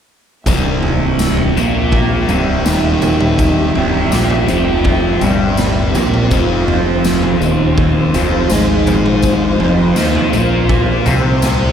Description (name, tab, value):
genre	psychedelic rock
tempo	82 BPM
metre	4/4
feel	straight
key	unclear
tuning	A4 = 440 Hz
part	dark studio string section	sustained chords	0.5-11.7 s	F3 to E5	-20 LUFS	right 1 dB	none
part	fuzz guitar	riff	0.5-11.7 s	C2 to Eb4	-15 LUFS	equal	distortion, phaser
part	fuzz fingered electric bass	bass	0.5-11.7 s	C1 to Eb2	-19 LUFS	equal	overdrive
part	raw garage drum kit	drums	0.5-11.6 s	kick drum, snare drum, toms	-17 LUFS	equal	none
part	tambourine	percussion	0.5-11.6 s	none	-32 LUFS	left 9 dB	none
room	moderate cathedral reverb, RT60 5.4 s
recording	dreamy mix soaked in reverb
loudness	-11 LUFS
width	side -8 dB against mid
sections	0.5-11.7 A section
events	none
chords	0.5 C; 6.3 F5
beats	| 0.47 1.20 1.93 2.66 | 3.39 4.12 4.85 5.58 | 6.31 7.04 7.78 8.51 | 9.24 9.97 10.70 11.43